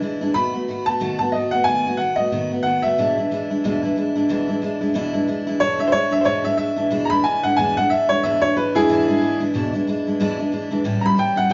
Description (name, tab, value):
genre	rock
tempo	183 BPM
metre	4/4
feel	swing 58% on 8ths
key	E mixolydian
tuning	A4 = 440 Hz
part	picked steel-string acoustic guitar	accompaniment	0.0-11.5 s	E2 to F#4	-24 LUFS	equal	none
part	bright upright piano	melody	0.3-11.5 s	E4 to B5	-22 LUFS	equal	none
room	moderate large studio reverb, RT60 1.2 s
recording	band playing live in one room, nothing above 7.5 kHz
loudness	-20 LUFS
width	mono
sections	0.0-5.6 A section; 5.6-11.5 B section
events	upright piano solo 5.6-11.5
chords	0.4 B7; 3.0 E7; 10.8 A7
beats	0.03 | 0.36 0.69 1.01 1.34 | 1.67 2.00 2.33 2.65 | 2.98 3.31 3.64 3.96 | 4.29 4.62 4.95 5.28 | 5.61 5.93 6.26 6.59 | 6.92 7.24 7.57 7.90 | 8.23 8.55 8.88 9.21 | 9.54 9.86 10.19 10.52 | 10.85 11.17 11.50